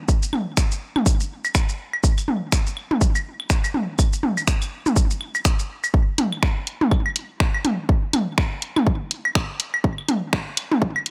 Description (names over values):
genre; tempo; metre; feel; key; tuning
techno; 123 BPM; 4/4; swing 58% on 16ths; none; none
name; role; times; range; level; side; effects
electronic kick drum; drums; 0.1-10.9 s; none; -22 LUFS; equal; none
punchy analog drum machine; drums; 0.1-11.1 s; finger snaps, hi-hat, shaker; -28 LUFS; equal; none
electronic toms and claves; percussion; 0.3-11.0 s; none; -25 LUFS; equal; delay
room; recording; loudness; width
little or no reverb; high-pass filter; -22 LUFS; mono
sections
0.0-5.9 A section; 5.9-11.1 B section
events
build-up 5.9-11.1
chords
none